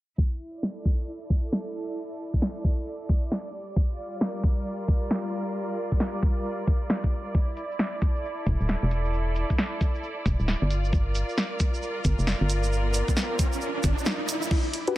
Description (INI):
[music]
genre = UK garage, two-step garage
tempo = 134 BPM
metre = 4/4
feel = swing 62% on 16ths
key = unclear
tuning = A4 = 441 Hz
[part]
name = electronic kick drum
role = drums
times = 0.2-14.6 s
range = none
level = -24 LUFS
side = equal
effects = overdrive, small room reverb
[part]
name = clear studio string section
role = texture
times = 0.2-15.0 s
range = G3 to D5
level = -33 LUFS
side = equal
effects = sidechain pumping
[part]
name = punchy analog drum machine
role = drums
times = 0.6-14.9 s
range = crash cymbal, hi-hat, snare drum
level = -28 LUFS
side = equal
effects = small room reverb
[part]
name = egg shaker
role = percussion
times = 7.4-14.5 s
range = none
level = -38 LUFS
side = right 6 dB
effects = none
[part]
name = organ-like FM bass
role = bass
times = 8.5-13.9 s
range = D1 to G1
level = -25 LUFS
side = equal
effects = none
[part]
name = riser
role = sound effects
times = 11.7-14.5 s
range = none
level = -33 LUFS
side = right 1 dB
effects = none
[part]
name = deep mellow chord stab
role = stabs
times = 14.9 s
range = D4 to B4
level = -23 LUFS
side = left 3 dB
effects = chorus
[sound]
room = light reverb, digital ambience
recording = low-pass filter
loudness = -24 LUFS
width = side -16 dB against mid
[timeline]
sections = 0.2-14.5 A section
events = filter sweep 0.2-14.5; riser 11.7-14.5; kick drops out 14.1-14.5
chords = 0.2 E7sus4; 3.5 Gm7; 7.3 E7(no3); 10.7 Gm7